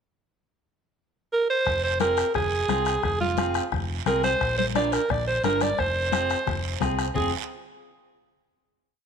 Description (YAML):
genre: latin, cumbia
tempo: 175 BPM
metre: 4/4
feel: straight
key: F dorian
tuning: A4 = 440 Hz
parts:
  - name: raspy alto saxophone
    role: melody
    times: 1.3-7.3 s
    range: F4 to D5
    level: -25 LUFS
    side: right 2 dB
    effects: none
  - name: hollow-body short-scale fingered electric bass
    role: bass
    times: 1.7-7.3 s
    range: F1 to C2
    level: -31 LUFS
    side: equal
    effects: none
  - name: bombo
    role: percussion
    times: 1.7-7.2 s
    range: none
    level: -31 LUFS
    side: left 8 dB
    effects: none
  - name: congas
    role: percussion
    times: 1.7-7.2 s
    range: none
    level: -33 LUFS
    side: left 11 dB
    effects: none
  - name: guiro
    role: percussion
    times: 1.7-7.2 s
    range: none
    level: -38 LUFS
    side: right 14 dB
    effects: none
  - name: clean electric guitar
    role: accompaniment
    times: 2.0-7.3 s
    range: C4 to Bb4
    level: -31 LUFS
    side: right 1 dB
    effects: none
room: moderate echo chamber reverb, RT60 1.7 s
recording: 1960s-style stereo with parts hard left and right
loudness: -22 LUFS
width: side -7 dB against mid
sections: 0.3-1.7 pickup bar; 1.7-7.2 A section; 7.2-8.5 final chord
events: none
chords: 0.3 N.C.; 1.7 Fm; 4.4 Bb; 5.8 Fm